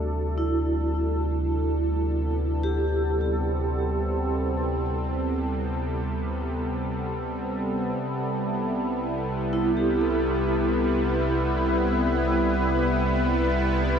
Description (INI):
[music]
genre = ambient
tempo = free time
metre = none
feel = none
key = unclear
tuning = A4 = 443 Hz
[part]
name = warm analog pad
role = sustained chords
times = 0.0-14.0 s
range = C3 to B4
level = -26 LUFS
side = equal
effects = chorus
[part]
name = vibraphone with medium mallets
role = arpeggios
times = 0.0-14.0 s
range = E4 to A4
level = -28 LUFS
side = right 1 dB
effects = ping-pong delay
[part]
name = warm sub bass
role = bass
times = 0.0-14.0 s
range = C2 to D2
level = -28 LUFS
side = equal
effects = none
[sound]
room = moderate lush hall reverb, RT60 2.7 s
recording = dark, warm production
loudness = -23 LUFS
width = side -7 dB against mid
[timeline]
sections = 0.0-14.0 A section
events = fade-in on analog synth pad 0.0-14.0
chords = 0.0 D7sus4; 8.0 Cmaj7